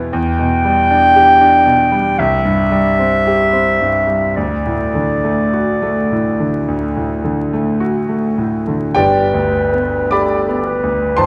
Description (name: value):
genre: classical, romantic duo for clarinet and grand piano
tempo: 50-59 BPM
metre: 4/4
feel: rubato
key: G major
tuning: A4 = 440 Hz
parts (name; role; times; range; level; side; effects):
- bright concert grand piano; accompaniment; 0.0-11.3 s; G1 to D6; -18 LUFS; equal; none
- mellow clarinet; melody; 0.1-11.3 s; A4 to G5; -17 LUFS; equal; none
room: wet scoring stage reverb, RT60 1.9 s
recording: dark, warm production, vinyl crackle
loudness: -15 LUFS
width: mono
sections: 0.0-9.0 A section; 9.0-11.3 B section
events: none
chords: 0.1 Em7; 2.2 C; 4.4 D; 9.0 G